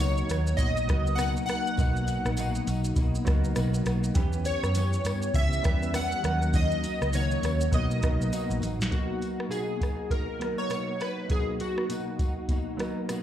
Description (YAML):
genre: indie pop, bedroom pop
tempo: 101 BPM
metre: 4/4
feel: swing 60% on 16ths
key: B major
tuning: A4 = 442 Hz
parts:
  - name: chorused retro synth keys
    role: melody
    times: 0.0-12.8 s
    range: F#4 to F#5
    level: -32 LUFS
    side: equal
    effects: analog chorus, slapback echo, ping-pong delay
  - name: clean electric guitar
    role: accompaniment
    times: 0.0-13.2 s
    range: B2 to G4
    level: -34 LUFS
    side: left 3 dB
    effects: ensemble chorus, warbly pitch drift
  - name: warm upright piano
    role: accompaniment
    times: 0.0-13.2 s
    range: F#3 to B4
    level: -35 LUFS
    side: right 3 dB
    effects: cassette tape, slapback echo
  - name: vintage muted picked electric bass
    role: bass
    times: 0.0-8.9 s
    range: A1 to B2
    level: -28 LUFS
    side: equal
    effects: none
  - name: soft vintage rhythm box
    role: drums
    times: 0.0-13.2 s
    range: hi-hat, kick drum, rim click, shaker, snare drum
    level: -29 LUFS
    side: equal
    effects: none
  - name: tambourine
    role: percussion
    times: 0.3-13.2 s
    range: none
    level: -48 LUFS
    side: left 3 dB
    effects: none
room: little or no reverb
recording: live gig heard through the venue's PA, club reverb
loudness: -25 LUFS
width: side -11 dB against mid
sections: 0.0-8.9 A section; 8.9-13.2 B section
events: drum fill 8.3-8.9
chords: 0.0 Bmaj7; 4.2 Em6; 6.2 D#m7; 7.7 Bmaj7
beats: 0.59 1.18 | 1.77 2.37 2.96 3.56 | 4.16 4.75 5.35 5.94 | 6.54 7.13 7.73 8.32 | 8.92 9.51 10.11 10.71 | 11.30 11.90 12.50 13.09